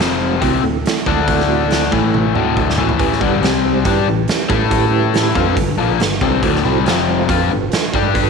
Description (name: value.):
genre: blues rock power trio and southern rock.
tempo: 140 BPM.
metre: 4/4.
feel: straight.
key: unclear.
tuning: A4 = 440 Hz.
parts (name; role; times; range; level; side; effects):
mellow tonewheel organ; sustained chords; 0.0-8.3 s; E3 to F5; -21 LUFS; right 10 dB; slow rotary speaker, chorus vibrato.
crunchy overdriven guitar; riff; 0.0-8.3 s; D2 to A4; -17 LUFS; left 9 dB; none.
overdriven fingered electric bass; bass; 0.0-8.3 s; D1 to A2; -22 LUFS; right 2 dB; none.
raw garage drum kit; drums; 0.0-8.3 s; hi-hat, kick drum, snare drum, toms; -19 LUFS; right 2 dB; none.
room: moderate echo chamber reverb, RT60 2.3 s.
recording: 1960s-style stereo with parts hard left and right.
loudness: -13 LUFS.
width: side -5 dB against mid.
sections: 0.0-8.3 A section.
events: drum fill 2.1-3.0.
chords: 0.0 F5; 0.4 D7; 1.9 A5; 2.3 D7; 3.0 A7; 3.4 C5; 3.9 A7; 5.4 G7; 6.4 D7; 6.9 F5; 7.3 G7.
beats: 0.41 0.84 | 1.27 1.70 2.13 2.56 | 2.99 3.42 3.85 4.28 | 4.71 5.14 5.57 6.00 | 6.43 6.86 7.29 7.71 | 8.14.